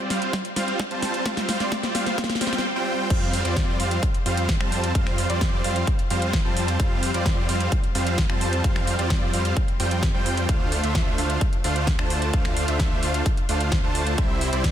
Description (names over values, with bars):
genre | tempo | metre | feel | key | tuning
EDM, festival progressive house | 130 BPM | 4/4 | straight | F major | A4 = 440 Hz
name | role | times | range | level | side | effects
supersaw chords | riff | 0.0-14.7 s | G3 to A5 | -25 LUFS | right 1 dB | cassette tape, sidechain pumping, ping-pong delay
pop drum kit | drums | 0.1-14.7 s | crash cymbal, finger snaps, hi-hat, snare drum | -29 LUFS | equal | none
electronic kick drum | drums | 0.3-14.7 s | none | -24 LUFS | equal | high-pass filter on kick, high-pass filter on room
detuned saw bass | bass | 3.1-14.7 s | C2 to F2 | -26 LUFS | equal | sidechain pumping
room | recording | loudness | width
light reverb | dense, heavily limited modern master | -21 LUFS | side -10 dB against mid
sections
0.0-3.1 A section; 3.1-14.7 B section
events
build-up 0.0-3.1; drum fill 0.0-2.6; drop 3.1-14.7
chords
0.0 Fsus2; 10.5 Dm7; 14.2 C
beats
0.34 0.80 | 1.26 1.72 2.18 2.64 | 3.10 3.57 4.03 4.49 | 4.95 5.41 5.87 6.33 | 6.80 7.26 7.72 8.18 | 8.64 9.10 9.57 10.03 | 10.49 10.95 11.41 11.87 | 12.34 12.80 13.26 13.72 | 14.18 14.64